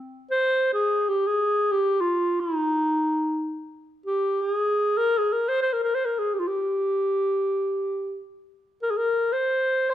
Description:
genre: Turkish makam ensemble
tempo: free time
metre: none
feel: none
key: unclear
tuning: A4 = 440 Hz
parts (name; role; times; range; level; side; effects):
- mellow clarinet; solo; 0.3-9.9 s; Eb4 to D5; -22 LUFS; equal; none
room: moderate recital hall reverb, RT60 1.6 s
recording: minimal, uncompressed stereo recording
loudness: -22 LUFS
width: side -11 dB against mid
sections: 0.1-9.9 A section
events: none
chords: none

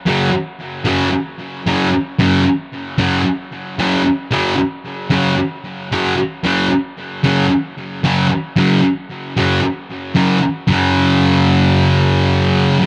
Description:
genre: rock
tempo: 113 BPM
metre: 4/4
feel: straight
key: unclear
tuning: A4 = 440 Hz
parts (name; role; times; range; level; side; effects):
- thick fuzz guitar; solo; 0.1-12.9 s; F#2 to F#3; -16 LUFS; equal; distortion, tape echo
room: light reverb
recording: none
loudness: -16 LUFS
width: mono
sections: 0.0-10.7 A section; 10.7-12.9 B section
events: none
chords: 0.0 F#5

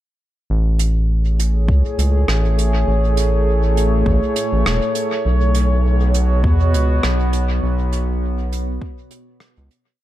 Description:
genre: ambient dub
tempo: 101 BPM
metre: 4/4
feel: swing 55% on 16ths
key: unclear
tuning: A4 = 440 Hz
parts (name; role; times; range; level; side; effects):
- warbly tape-like pad; sustained chords; 1.2-10.0 s; A2 to C#5; -22 LUFS; equal; chorus, built-in reverb
- round analog bass; bass; 0.5-9.7 s; E1 to E2; -16 LUFS; equal; tube saturation
- soft brush drum kit; drums; 0.8-9.8 s; hi-hat, rim click; -25 LUFS; right 2 dB; dub echo
- electronic kick drum; drums; 1.7-8.9 s; none; -20 LUFS; equal; none
room: little or no reverb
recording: echo-heavy mix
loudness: -15 LUFS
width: side -14 dB against mid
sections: 0.5-10.0 groove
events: fade-out 6.8-10.0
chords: 0.5 Amaj7; 5.3 Bsus2

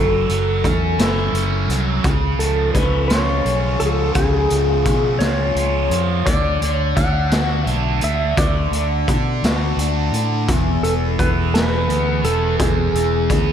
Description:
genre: psychedelic rock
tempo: 57 BPM (dotted quarters)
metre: 6/8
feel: straight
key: unclear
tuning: A4 = 442 Hz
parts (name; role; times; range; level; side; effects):
- clean lap steel guitar; melody; 0.0-13.5 s; G#4 to F#5; -22 LUFS; equal; ping-pong delay
- fuzz guitar; riff; 0.0-13.5 s; E2 to G#4; -22 LUFS; right 1 dB; distortion, phaser
- fingered electric bass; bass; 0.0-13.5 s; E1 to B2; -21 LUFS; equal; none
- raw garage drum kit; drums; 0.3-13.5 s; hi-hat, kick drum, snare drum; -21 LUFS; equal; none
room: moderate plate reverb, RT60 2.6 s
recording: dreamy mix soaked in reverb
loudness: -16 LUFS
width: side -9 dB against mid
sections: 0.0-13.5 A section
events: none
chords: 0.0 F#m7; 2.0 C#; 6.3 D; 10.5 E

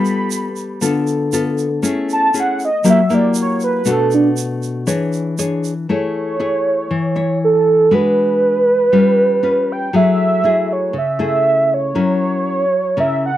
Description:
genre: bossa nova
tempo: 118 BPM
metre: 4/4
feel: straight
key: A major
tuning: A4 = 439 Hz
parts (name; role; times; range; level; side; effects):
- warm velvety synth lead; melody; 0.0-13.4 s; D4 to B5; -15 LUFS; right 2 dB; chorus, slapback echo
- nylon-string guitar; accompaniment; 0.0-13.4 s; B2 to C#5; -17 LUFS; left 3 dB; none
- tube shaker; percussion; 0.1-5.9 s; none; -28 LUFS; right 9 dB; none
room: light reverb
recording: dry, close 1970s-style studio recording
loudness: -14 LUFS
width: side -13 dB against mid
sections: 0.0-5.9 A section; 5.9-13.4 B section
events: soft synth lead solo 0.0-5.9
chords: 0.0 G9; 1.8 Amaj7; 2.8 F#7b9; 3.9 Bm7; 4.9 E6; 5.9 Amaj7; 7.9 G#m7b5; 8.9 G7#11; 9.9 F#m9; 12.0 F#7

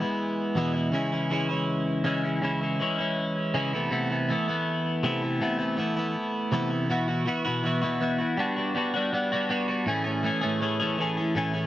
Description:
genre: rock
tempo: 161 BPM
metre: 4/4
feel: straight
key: unclear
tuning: A4 = 436 Hz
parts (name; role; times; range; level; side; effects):
- twelve-string electric guitar; solo; 0.0-11.7 s; E2 to G#4; -24 LUFS; equal; phaser, tape echo
room: moderate studio ambience, RT60 0.5 s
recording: none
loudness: -24 LUFS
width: side -14 dB against mid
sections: 0.0-6.9 A section; 6.9-11.7 B section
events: none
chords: 0.0 E; 0.9 C#m; 3.7 Amadd9/C; 6.9 Bsus4; 8.4 Gmaj7; 9.9 Amaj7

